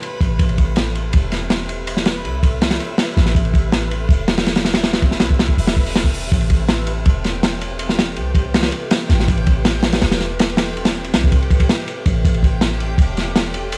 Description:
drum and bass, jungle; 162 BPM; 4/4; straight; A minor; A4 = 441 Hz
ethereal airy pad; sustained chords; 0.0-13.8 s; C4 to E5; -32 LUFS; equal; ensemble chorus, built-in reverb, phaser
crunchy breakbeat drum kit; drums; 0.0-13.8 s; hi-hat, kick drum, ride cymbal, snare drum; -19 LUFS; equal
backwards swelling texture; texture; 0.0-13.8 s; G4 to B5; -35 LUFS; equal; built-in reverb
warm 808-style bass; bass; 0.2-13.8 s; E1 to C2; -23 LUFS; equal
small room ambience; dry, gritty hardware recording, vinyl crackle; -17 LUFS; mono
0.0-13.8 A section
0.0 Am9

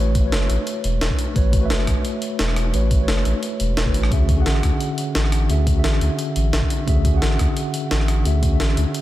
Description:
liquid drum and bass; 174 BPM; 4/4; straight; A4 = 440 Hz
mellow tine electric piano; accompaniment; 0.0-9.0 s; D3 to F#5; -24 LUFS; equal; medium stereo tremolo, dub echo
saturated sub bass; bass; 0.0-8.9 s; E1 to D2; -19 LUFS; equal
breakbeat sampler-style drum kit; drums; 0.1-9.0 s; hi-hat, rim click, snare drum; -26 LUFS; equal
electronic kick drum; drums; 0.2-8.5 s; -20 LUFS; equal
digital ambience; -17 LUFS; side -14 dB against mid
0.0-9.0 A section
0.0 A69; 4.1 Dmaj9#11

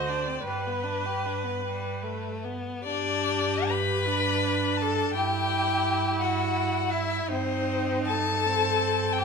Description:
classical, slow romantic movement for string quartet; 47-58 BPM (dotted quarters); 6/8; rubato; G major; A4 = 440 Hz
rich violin; melody; 0.0-9.2 s; B4 to B5; -29 LUFS; left 7 dB
rich violin; second line; 0.0-9.2 s; G3 to B4; -30 LUFS; left 3 dB
rich viola; accompaniment; 0.0-9.2 s; C4 to C5; -31 LUFS; right 4 dB
rich cello; bass; 0.0-9.2 s; D2 to G2; -33 LUFS; right 6 dB
moderate recital hall reverb, RT60 1.4 s; minimal, uncompressed stereo recording; -24 LUFS; side -5 dB against mid
0.0-2.9 A section; 2.9-9.2 B section
0.5 G; 5.1 Emadd9/G; 7.3 Cm/G

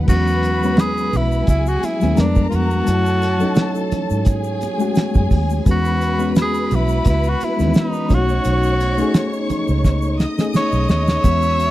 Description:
lush 1970s-style soul; 86 BPM; 4/4; swing 54% on 16ths; E major; A4 = 440 Hz
dark studio string section; second line; 0.0-11.7 s; G#4 to E6; -28 LUFS; left 2 dB
mellow reed electric piano; accompaniment; 0.0-11.7 s; E3 to A4; -22 LUFS; left 3 dB; fast tremolo
vintage muted fingered electric bass; bass; 0.0-11.7 s; B1 to G#2; -19 LUFS; equal
breathy tenor saxophone; melody; 0.1-11.7 s; D4 to C#5; -21 LUFS; equal
mellow French horn section; sustained chords; 0.1-11.7 s; D3 to C#5; -29 LUFS; right 3 dB
cloth-damped thuddy drum kit; drums; 0.1-11.7 s; crash cymbal, hi-hat, kick drum, snare drum; -16 LUFS; equal
egg shaker; percussion; 0.1-11.7 s; -42 LUFS; left 14 dB
congas; percussion; 0.8-11.7 s; -31 LUFS; right 5 dB
little or no reverb; dry, close 1970s-style studio recording; -15 LUFS; side -15 dB against mid
0.1-11.7 A section
drum fill 9.8-11.2
0.1 E69; 2.2 Fdim7; 2.9 F#m9; 5.7 E69; 8.1 B9

